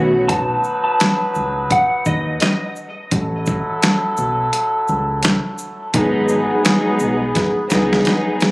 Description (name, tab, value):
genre	hip hop, boom-bap hip-hop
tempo	85 BPM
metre	4/4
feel	swing 59% on 16ths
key	F# dorian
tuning	A4 = 439 Hz
part	warm studio string section	accompaniment	0.0-0.3, 5.9-8.5 s	D#3 to G#4	-16 LUFS	equal	cassette tape, high-pass filter, low-pass filter
part	muted trumpet section	stabs	0.0-8.4 s	F#3 to B4	-22 LUFS	equal	high-pass filter, low-pass filter, tape echo
part	deep dub fingered electric bass	bass	0.0-8.0 s	G#1 to D#2	-23 LUFS	equal	none
part	clean electric guitar	melody	0.3-2.7 s	D#5 to A5	-20 LUFS	equal	ensemble chorus, high-pass filter, low-pass filter, tape echo
part	dusty soul sampler-style drum kit	drums	0.3-8.5 s	handclaps, hi-hat, kick drum, shaker, snare drum	-18 LUFS	equal	none
room	light reverb, digital ambience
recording	recorded on a phone in the room, club reverb, compression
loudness	-15 LUFS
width	side -23 dB against mid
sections	0.0-8.5 A section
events	break 0.3-5.9; drum fill 7.4-8.5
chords	0.0 B7; 3.1 F#m7/A; 5.9 G#m7